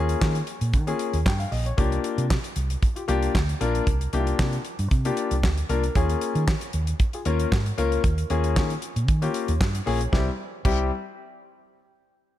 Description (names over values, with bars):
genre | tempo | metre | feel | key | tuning
early-eighties boogie funk | 115 BPM | 4/4 | straight | unclear | A4 = 438 Hz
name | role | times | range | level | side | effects
warm concert grand piano | accompaniment | 0.0-10.9 s | G3 to G5 | -27 LUFS | left 5 dB | none
vintage muted fingered electric bass | bass | 0.0-10.9 s | Bb1 to Eb3 | -25 LUFS | right 1 dB | none
damped 70s drum kit | drums | 0.1-10.8 s | crash cymbal, handclaps, hi-hat, kick drum, snare drum | -25 LUFS | right 1 dB | none
room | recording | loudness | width
light reverb | none | -22 LUFS | side -13 dB against mid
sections
0.0-10.1 A section; 10.1-12.2 B section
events
none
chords
0.0 Eb9sus4; 1.8 C9sus4; 6.0 Eb9sus4; 10.1 C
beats
0.21 0.74 1.26 | 1.78 2.30 2.82 3.35 | 3.87 4.39 4.91 5.43 | 5.95 6.48 7.00 7.52 | 8.04 8.56 9.08 9.61 | 10.13 10.65